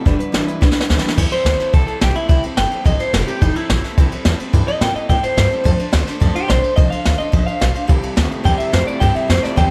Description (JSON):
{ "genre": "rockabilly", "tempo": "214 BPM", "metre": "4/4", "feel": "straight", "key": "C major", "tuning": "A4 = 440 Hz", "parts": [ { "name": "picked steel-string acoustic guitar", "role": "accompaniment", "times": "0.0-9.7 s", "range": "C3 to C5", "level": "-28 LUFS", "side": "equal", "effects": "none" }, { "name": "electric guitar through a small old amp", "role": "riff", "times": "0.0-1.1, 7.9-9.7 s", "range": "G2 to A3", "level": "-25 LUFS", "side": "equal", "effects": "none" }, { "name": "upright bass", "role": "bass", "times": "0.1-9.7 s", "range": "F1 to Bb2", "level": "-21 LUFS", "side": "equal", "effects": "none" }, { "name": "jazz brush drum kit", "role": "drums", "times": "0.1-9.6 s", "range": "crash cymbal, hi-hat, kick drum, ride cymbal, snare drum", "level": "-20 LUFS", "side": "equal", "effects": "none" }, { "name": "electric guitar through a small old amp", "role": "melody", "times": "1.3-9.7 s", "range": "Eb4 to G5", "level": "-23 LUFS", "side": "equal", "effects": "tape echo" } ], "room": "little or no reverb", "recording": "none", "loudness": "-16 LUFS", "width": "mono", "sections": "0.0-1.2 A section; 1.2-9.7 B section", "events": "drum fill 0.6-1.2; clean electric guitar solo 1.2-9.7", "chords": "0.1 G6; 1.2 C6; 5.7 F6; 7.9 C6", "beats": "| 0.05 0.34 0.61 0.90 | 1.18 1.46 1.74 2.02 | 2.30 2.58 2.86 3.14 | 3.42 3.70 3.98 4.26 | 4.54 4.82 5.10 5.38 | 5.66 5.94 6.22 6.50 | 6.78 7.06 7.34 7.62 | 7.89 8.18 8.46 8.73 | 9.01 9.29 9.57" }